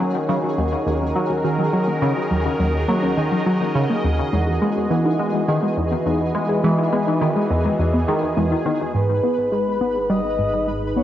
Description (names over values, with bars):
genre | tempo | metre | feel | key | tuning
ambient, sequencer-driven space music | 104 BPM | 4/4 | straight | unclear | A4 = 439 Hz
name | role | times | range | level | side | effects
sweeping resonant pad | sustained chords | 0.0-11.0 s | D#3 to D#5 | -24 LUFS | right 1 dB | chorus, cassette tape
warbly dusty pluck | arpeggios | 0.0-8.7 s | F#3 to B4 | -25 LUFS | left 1 dB | chorus, auto-pan, cassette tape, ping-pong delay
tight sequenced synth | riff | 0.0-11.0 s | D#2 to B3 | -21 LUFS | equal | chorus, cassette tape, ping-pong delay
pulsing gated texture | texture | 0.0-11.0 s | G#4 to B5 | -31 LUFS | right 1 dB | chorus, built-in reverb, cassette tape
breathy flute-like synth lead | melody | 8.9-11.0 s | B4 to D#5 | -22 LUFS | left 1 dB | wide subtle chorus, cassette tape, ping-pong delay
warm sub bass | bass | 8.9-11.0 s | G#1 | -35 LUFS | equal | none
room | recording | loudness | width
wet spring reverb, RT60 2.6 s | home recording on cassette, nothing above 7.9 kHz | -18 LUFS | side -12 dB against mid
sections
0.0-8.9 A section; 8.9-11.0 B section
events
filter sweep on synth arpeggio sound 8.9-11.0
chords
0.0 D#m7; 4.3 Emaj7; 8.9 G#m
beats
0.29 0.87 1.44 | 2.02 2.60 3.17 3.75 | 4.33 4.91 5.48 6.06 | 6.64 7.21 7.79 8.37 | 8.94 9.52 10.10 10.68